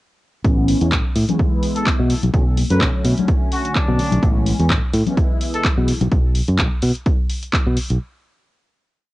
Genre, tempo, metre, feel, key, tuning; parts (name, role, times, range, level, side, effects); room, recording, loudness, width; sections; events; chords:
filtered disco house; 127 BPM; 4/4; swing 55% on 16ths; B dorian; A4 = 440 Hz
mellow synth brass; accompaniment; 0.4-5.9 s; D3 to E4; -23 LUFS; equal; chorus, phaser, sidechain pumping, low-pass filter
fingered electric bass; bass; 0.4-8.0 s; A1 to B2; -18 LUFS; equal; tube saturation, sidechain pumping, low-pass filter
electronic kick drum; drums; 0.4-7.6 s; -19 LUFS; equal; cassette tape
house drum kit; drums; 0.4-8.0 s; handclaps, hi-hat; -25 LUFS; equal; sidechain pumping on hats, cassette tape
tambourine and congas; percussion; 0.4-6.1 s; -26 LUFS; left 8 dB; sidechain pumping on perc, low-pass filter on perc
warm trumpet section; melody; 1.8-5.7 s; D4 to B4; -27 LUFS; left 2 dB; sidechain pumping, low-pass filter, tape echo
little or no reverb; home recording on cassette, nothing above 10.5 kHz; -16 LUFS; side -18 dB against mid
0.4-8.0 groove
filter sweep 0.4-8.0
0.4 Amaj9; 2.1 Bm7; 4.2 Amaj9; 5.9 B5